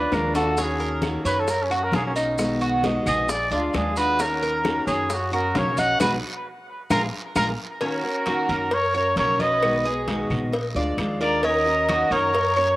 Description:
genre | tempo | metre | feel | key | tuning
latin, Cuban son and guajira | 133 BPM | 4/4 | straight | Eb minor | A4 = 440 Hz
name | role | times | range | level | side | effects
warm trumpet | melody | 0.0-12.8 s | Db4 to Gb5 | -24 LUFS | equal | cassette tape, tape echo
picked steel-string acoustic guitar | accompaniment | 0.0-12.8 s | B2 to Gb4 | -28 LUFS | left 1 dB | cassette tape
Cuban tres | arpeggios | 0.0-12.8 s | Db4 to D#5 | -27 LUFS | right 2 dB | cassette tape
upright bass | bass | 0.0-12.7 s | Bb1 to Gb2 | -30 LUFS | equal | none
bongos and cowbell | percussion | 0.1-12.6 s | none | -31 LUFS | left 3 dB | none
claves | percussion | 0.1-12.8 s | none | -35 LUFS | left 4 dB | none
congas | percussion | 0.1-12.8 s | none | -32 LUFS | equal | none
guiro | percussion | 0.1-12.8 s | none | -39 LUFS | right 3 dB | none
maracas | percussion | 0.1-7.5 s | none | -38 LUFS | right 2 dB | none
rich studio violin section | second line | 7.8-12.8 s | Gb4 to Cb5 | -30 LUFS | equal | cassette tape
room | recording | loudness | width
moderate spring reverb, RT60 1.8 s | home recording on cassette | -20 LUFS | side -17 dB against mid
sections
0.0-7.8 A section; 7.8-12.8 B section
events
drum fill 0.0-0.6, 7.1-7.8; trumpet solo 0.0-7.8; band accent 6.0-7.8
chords
0.0 Bb7; 0.6 Ebm7; 1.5 Gb; 2.4 B6; 3.3 Bb7; 4.2 Ebm7; 5.1 Gb; 6.0 B6; 6.9 Bb7; 7.8 Ebm7; 8.7 Gb; 9.6 B6; 10.5 Bb7; 11.4 Ebm7

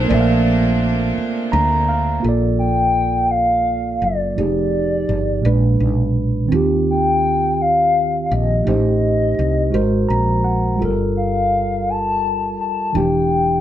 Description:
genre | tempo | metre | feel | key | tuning
slow six-eight R&B | 56 BPM (dotted quarters) | 6/8 | straight | Bb major | A4 = 440 Hz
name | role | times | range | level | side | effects
hollow clarinet-like synth lead | melody | 0.0-13.6 s | D5 to A5 | -19 LUFS | left 2 dB | chorus
mellow tine electric piano | accompaniment | 0.0-13.6 s | Bb2 to Bb5 | -19 LUFS | right 2 dB | none
bright chamber string section | sustained chords | 0.0-2.2 s | Bb2 to D4 | -24 LUFS | right 1 dB | none
woody fretless electric bass | bass | 0.0-13.6 s | E1 to Eb2 | -20 LUFS | equal | none
room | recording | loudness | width
moderate large studio reverb, RT60 0.9 s | band playing live in one room | -15 LUFS | side -11 dB against mid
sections
0.0-2.2 A section; 2.2-13.6 B section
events
tine electric piano fill 1.2-2.2, 9.7-10.8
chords
0.0 Bbmaj9; 2.2 Bbmaj7; 4.4 Fm9; 5.4 Bb7b9; 6.5 Eb69; 8.7 Am7b5; 9.7 Ab9; 10.8 Gm9; 12.9 Em7

